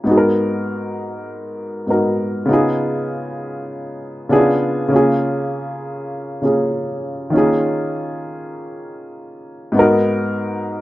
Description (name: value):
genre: soul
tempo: 99 BPM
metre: 4/4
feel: swing 54% on 16ths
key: G# dorian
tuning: A4 = 440 Hz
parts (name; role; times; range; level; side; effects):
- warm baby grand piano; solo; 0.0-10.8 s; G#2 to A#4; -17 LUFS; equal; none
room: light reverb, small room reverb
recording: rough home demo mix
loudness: -16 LUFS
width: side -16 dB against mid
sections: 0.0-9.8 A section; 9.8-10.8 B section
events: none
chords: 0.1 G#m9; 2.5 C#7; 4.3 C#7b9; 4.9 C#6; 7.3 D#9sus4; 9.8 G#m9